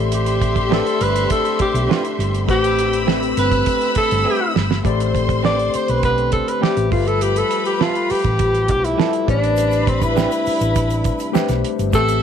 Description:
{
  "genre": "lush 1970s-style soul",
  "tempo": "102 BPM",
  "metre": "4/4",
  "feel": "straight",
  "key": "A minor",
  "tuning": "A4 = 439 Hz",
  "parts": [
    { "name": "warm studio string section", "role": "second line", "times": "0.0-12.2 s", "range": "C4 to E6", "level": "-25 LUFS", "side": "left 2 dB", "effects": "none" },
    { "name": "tine electric piano", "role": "accompaniment", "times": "0.0-12.2 s", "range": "G3 to E5", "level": "-24 LUFS", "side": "left 15 dB", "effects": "fast stereo tremolo" },
    { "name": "dark French horn section", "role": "sustained chords", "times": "0.0-12.2 s", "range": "C3 to G4", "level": "-29 LUFS", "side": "right 1 dB", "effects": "none" },
    { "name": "hollow-body short-scale fingered electric bass", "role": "bass", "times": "0.0-12.2 s", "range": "G1 to B1", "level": "-21 LUFS", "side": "equal", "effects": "none" },
    { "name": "clear alto saxophone", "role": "melody", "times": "0.1-12.2 s", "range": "C4 to D5", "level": "-20 LUFS", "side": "equal", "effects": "tape echo" },
    { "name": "damped 70s drum kit", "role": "drums", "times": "0.1-12.2 s", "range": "hi-hat, kick drum, snare drum", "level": "-22 LUFS", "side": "right 5 dB", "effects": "none" },
    { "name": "electric guitar through a small old amp", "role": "riff", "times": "0.7-11.5 s", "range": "F3 to B4", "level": "-28 LUFS", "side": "right 11 dB", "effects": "none" },
    { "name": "egg shaker", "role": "percussion", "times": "9.6-12.2 s", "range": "none", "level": "-41 LUFS", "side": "left 19 dB", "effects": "none" }
  ],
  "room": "moderate spring reverb, RT60 1.6 s, studio ambience",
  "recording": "1960s-style stereo with parts hard left and right",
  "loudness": "-15 LUFS",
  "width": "side -8 dB against mid",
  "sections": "0.0-4.9 A section; 4.9-12.2 B section",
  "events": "drum fill 4.3-4.9; alto saxophone solo 4.9-12.2",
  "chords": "0.0 Am11; 6.9 G13; 9.3 Am11"
}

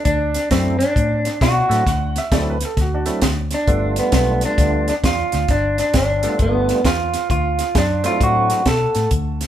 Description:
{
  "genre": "electric blues shuffle",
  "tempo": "132 BPM",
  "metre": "4/4",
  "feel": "swing 64% on 8ths",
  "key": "D mixolydian",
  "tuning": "A4 = 442 Hz",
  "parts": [
    { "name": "electric guitar through a small old amp", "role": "melody", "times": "0.0-9.1 s", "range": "B3 to A4", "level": "-19 LUFS", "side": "equal", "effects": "spring reverb" },
    { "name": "vintage muted fingered electric bass", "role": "bass", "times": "0.1-9.4 s", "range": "G1 to B2", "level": "-22 LUFS", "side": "left 1 dB", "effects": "none" },
    { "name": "compact cocktail drum kit", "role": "drums", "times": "0.1-9.5 s", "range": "hi-hat, kick drum, snare drum", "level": "-21 LUFS", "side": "equal", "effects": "none" },
    { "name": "percussive tonewheel organ", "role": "accompaniment", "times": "0.5-8.6 s", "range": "F#3 to F4", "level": "-23 LUFS", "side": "right 2 dB", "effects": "slow rotary speaker, overdrive" },
    { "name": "clear upright piano", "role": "second line", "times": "1.9-3.4 s", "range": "D4 to F#5", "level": "-25 LUFS", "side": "right 2 dB", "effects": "none" }
  ],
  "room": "light reverb",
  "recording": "band playing live in one room",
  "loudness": "-16 LUFS",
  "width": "side -11 dB against mid",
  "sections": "0.0-9.5 A section",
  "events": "none",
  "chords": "0.1 D9; 3.7 G9; 7.3 D9"
}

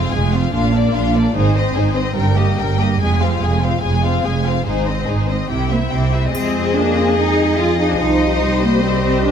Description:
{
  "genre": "cinematic, heroic adventure film score",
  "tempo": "144 BPM",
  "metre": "4/4",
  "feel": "straight",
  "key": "F dorian",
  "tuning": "A4 = 436 Hz",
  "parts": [
    { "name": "rich symphonic violin section", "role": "melody", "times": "0.0-9.3 s", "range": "C5 to Ab5", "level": "-24 LUFS", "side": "left 6 dB", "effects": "none" },
    { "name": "warm studio violin section", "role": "second line", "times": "0.0-9.3 s", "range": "D4 to C5", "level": "-24 LUFS", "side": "left 6 dB", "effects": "none" },
    { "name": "warm symphonic viola section", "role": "accompaniment", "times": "0.0-9.3 s", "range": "G3 to Ab4", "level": "-23 LUFS", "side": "equal", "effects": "none" },
    { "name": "rich symphonic cello section", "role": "bass", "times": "0.0-9.3 s", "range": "F2 to F4", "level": "-19 LUFS", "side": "right 2 dB", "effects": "none" },
    { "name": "warm studio double bass section", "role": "bass", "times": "0.0-9.3 s", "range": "F1 to F2", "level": "-20 LUFS", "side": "right 3 dB", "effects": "none" },
    { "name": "triangle", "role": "percussion", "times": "6.3-7.1 s", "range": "none", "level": "-36 LUFS", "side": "left 2 dB", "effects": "none" },
    { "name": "warm French horn section", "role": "sustained chords", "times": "6.4-9.3 s", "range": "Eb3 to Bb3", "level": "-21 LUFS", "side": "left 4 dB", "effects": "none" }
  ],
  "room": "moderate scoring stage reverb, RT60 1.5 s",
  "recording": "none",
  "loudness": "-14 LUFS",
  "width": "side -8 dB against mid",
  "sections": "0.0-6.3 A section; 6.3-9.3 B section",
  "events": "build-up 0.0-6.3",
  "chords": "0.0 Fm; 0.5 Bb; 1.4 Ab; 2.2 Eb/G; 3.0 Fm; 4.7 Ab; 5.5 C; 6.3 Fm7; 8.0 Cm"
}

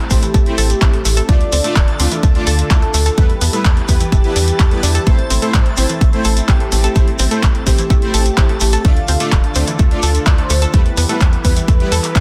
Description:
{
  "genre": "progressive house",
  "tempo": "127 BPM",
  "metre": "4/4",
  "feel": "straight",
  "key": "A minor",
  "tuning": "A4 = 440 Hz",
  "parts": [
    { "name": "filtered supersaw swell", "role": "sustained chords", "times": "0.0-12.2 s", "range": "D3 to B4", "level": "-28 LUFS", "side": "equal", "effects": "sidechain pumping" },
    { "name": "tight sequencer bass", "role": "bass", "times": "0.0-12.2 s", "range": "D1 to A2", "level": "-20 LUFS", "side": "equal", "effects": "sidechain pumping" },
    { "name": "backwards swelling texture", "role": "texture", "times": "0.1-12.2 s", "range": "A4 to A5", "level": "-37 LUFS", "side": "equal", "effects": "none" },
    { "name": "warm velvety synth lead", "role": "melody", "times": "0.1-12.2 s", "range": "G4 to F5", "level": "-26 LUFS", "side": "equal", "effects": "chorus, tape echo" },
    { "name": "analog pluck", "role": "arpeggios", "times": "0.1-12.2 s", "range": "E3 to A4", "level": "-26 LUFS", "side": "equal", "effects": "chorus, sidechain pumping, tape echo" },
    { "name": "soft supersaw", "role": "stabs", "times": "0.1-11.9 s", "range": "G3 to D5", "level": "-26 LUFS", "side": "equal", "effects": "subtle chorus, sidechain pumping, tape echo" },
    { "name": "deep house drum kit", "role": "drums", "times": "0.1-12.2 s", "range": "handclaps, hi-hat", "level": "-24 LUFS", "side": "equal", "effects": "overdrive" },
    { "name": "electronic kick drum", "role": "drums", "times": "0.1-12.2 s", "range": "none", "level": "-15 LUFS", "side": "equal", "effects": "none" },
    { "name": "shekere", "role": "percussion", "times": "0.1-12.2 s", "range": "none", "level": "-28 LUFS", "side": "equal", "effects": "none" }
  ],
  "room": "digital ambience",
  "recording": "dense, heavily limited modern master",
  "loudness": "-14 LUFS",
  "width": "mono",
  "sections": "0.0-12.2 A section",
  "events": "none",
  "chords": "0.0 Am; 1.3 Dm; 3.2 Em; 5.1 Am; 8.8 Dm; 10.7 Em"
}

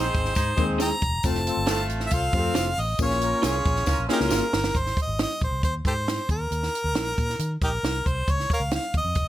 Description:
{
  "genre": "uptempo 1960s-style soul",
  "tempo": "136 BPM",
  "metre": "4/4",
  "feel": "straight",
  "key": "Ab major",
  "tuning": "A4 = 442 Hz",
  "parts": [
    { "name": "clear harmonica", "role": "melody", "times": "0.0-9.3 s", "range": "Eb4 to Bb5", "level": "-27 LUFS", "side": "equal", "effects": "none" },
    { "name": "dark horn section", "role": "second line", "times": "0.0-4.5 s", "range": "A3 to C5", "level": "-30 LUFS", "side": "right 1 dB", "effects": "none" },
    { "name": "electric guitar through a small old amp", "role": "stabs", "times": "0.0-4.4 s", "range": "Eb4 to Db5", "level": "-31 LUFS", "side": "right 7 dB", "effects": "none" },
    { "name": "vintage muted fingered electric bass", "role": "bass", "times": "0.0-9.3 s", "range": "Fb1 to Eb3", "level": "-29 LUFS", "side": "equal", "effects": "none" },
    { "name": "compact cocktail drum kit", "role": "drums", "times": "0.1-9.3 s", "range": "hi-hat, kick drum, snare drum", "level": "-26 LUFS", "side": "right 1 dB", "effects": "none" },
    { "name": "tambourine", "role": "percussion", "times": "0.4-4.4 s", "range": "none", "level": "-37 LUFS", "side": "left 13 dB", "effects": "none" },
    { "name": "mellow tine electric piano", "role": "accompaniment", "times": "0.6-4.4 s", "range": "Ab3 to Db5", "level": "-28 LUFS", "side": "left 6 dB", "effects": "medium stereo tremolo" }
  ],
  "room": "light reverb",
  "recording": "none",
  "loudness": "-22 LUFS",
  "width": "side -14 dB against mid",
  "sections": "0.0-4.8 A section; 4.8-9.3 B section",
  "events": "drum fill 3.9-4.8",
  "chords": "0.0 Ab; 1.2 F; 3.0 Bbm; 4.8 Ab; 6.3 Eb5; 8.3 Dbadd9"
}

